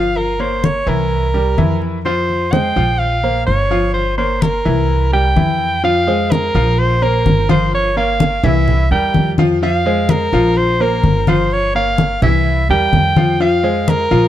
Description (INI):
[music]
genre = latin, Cuban son and guajira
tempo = 127 BPM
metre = 4/4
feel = straight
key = F harmonic minor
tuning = A4 = 440 Hz
[part]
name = bright soprano saxophone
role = melody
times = 0.0-14.3 s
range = Bb4 to G5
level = -18 LUFS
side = right 1 dB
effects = none
[part]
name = bright grand piano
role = arpeggios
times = 0.0-14.3 s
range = E3 to F5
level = -18 LUFS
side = left 1 dB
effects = none
[part]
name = upright bass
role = bass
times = 0.0-14.3 s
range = G1 to F2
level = -18 LUFS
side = right 1 dB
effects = none
[part]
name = congas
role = percussion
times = 0.2-14.3 s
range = none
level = -17 LUFS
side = left 2 dB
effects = none
[sound]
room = light reverb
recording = dark, warm production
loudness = -12 LUFS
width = side -12 dB against mid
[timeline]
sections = 0.0-5.8 A section; 5.8-14.3 B section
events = drum fill 13.2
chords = 0.2 Gm7b5; 1.1 C7; 2.1 Fm; 3.0 Bbmadd9; 3.9 Gm7b5; 4.9 C7; 5.8 Fm; 6.8 Bbsus2; 7.7 Gm7b5; 8.7 C7; 9.6 Fm; 10.6 Bbsus2; 11.5 Gm7b5; 12.5 C7; 13.4 Fm